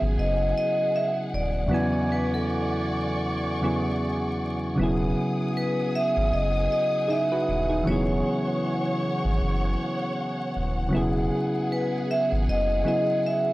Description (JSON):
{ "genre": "hip hop", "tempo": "78 BPM", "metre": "4/4", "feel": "swing 57% on 16ths", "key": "E major", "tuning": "A4 = 440 Hz", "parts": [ { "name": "soft electric-piano-like synth keys", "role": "accompaniment", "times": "0.0-13.5 s", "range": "E2 to G#5", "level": "-26 LUFS", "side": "equal", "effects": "chorus, cassette tape, low-pass filter" }, { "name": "warm studio string section", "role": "sustained chords", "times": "0.0-13.5 s", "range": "G#4 to D#6", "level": "-33 LUFS", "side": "left 1 dB", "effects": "low-pass filter" }, { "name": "sub bass with octave", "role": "bass", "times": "0.0-12.8 s", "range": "D#1 to G#1", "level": "-27 LUFS", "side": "equal", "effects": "transformer saturation" }, { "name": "vibraphone with hard mallets", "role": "melody", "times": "0.2-13.5 s", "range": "A4 to E5", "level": "-26 LUFS", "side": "equal", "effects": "low-pass filter" } ], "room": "light reverb, studio reverb", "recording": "dry, gritty hardware recording, transformer saturation, vinyl crackle", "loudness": "-23 LUFS", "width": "side -18 dB against mid", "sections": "0.0-13.5 A section", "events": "none", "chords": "0.0 Emaj9; 1.7 Dmaj9/E; 4.8 Emaj13" }